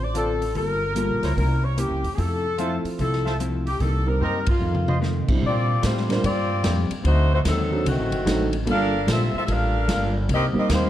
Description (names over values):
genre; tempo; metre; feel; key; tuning
jazz, big band swing; 148 BPM; 4/4; swing 65% on 8ths; F major; A4 = 440 Hz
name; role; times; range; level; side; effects
clear saxophone section; melody; 0.0-10.9 s; Eb3 to F5; -26 LUFS; left 1 dB; none
archtop guitar, miked and amplified; accompaniment; 0.0-10.9 s; F2 to A4; -30 LUFS; left 3 dB; none
upright bass; bass; 0.0-10.9 s; F#1 to Bb2; -24 LUFS; equal; none
mellow trumpet section; stabs; 0.1-5.0 s; E4 to C6; -33 LUFS; right 2 dB; none
swinging big-band drum kit; drums; 0.1-10.8 s; crash cymbal, hi-hat, kick drum, ride cymbal, snare drum, toms; -28 LUFS; equal; none
dark concert grand piano; accompaniment; 0.9-10.9 s; F3 to Bb4; -28 LUFS; right 2 dB; none
room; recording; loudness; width
light reverb; dark, warm production; -20 LUFS; side -12 dB against mid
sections
0.0-5.4 A section; 5.4-10.9 B section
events
drum fill 4.2-5.0; band accent 4.4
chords
0.0 Dm7; 0.6 Gm9; 1.4 C7b9; 2.2 Fmaj7; 3.8 Cm7; 4.6 F7; 5.4 Bb69; 7.0 D7b9; 8.7 Gm9; 10.3 Cm7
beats
0.15 | 0.56 0.96 1.37 1.78 | 2.18 2.59 2.99 3.40 | 3.81 4.21 4.62 5.02 | 5.43 5.83 6.24 6.64 | 7.05 7.45 7.86 8.26 | 8.67 9.07 9.48 9.88 | 10.29 10.69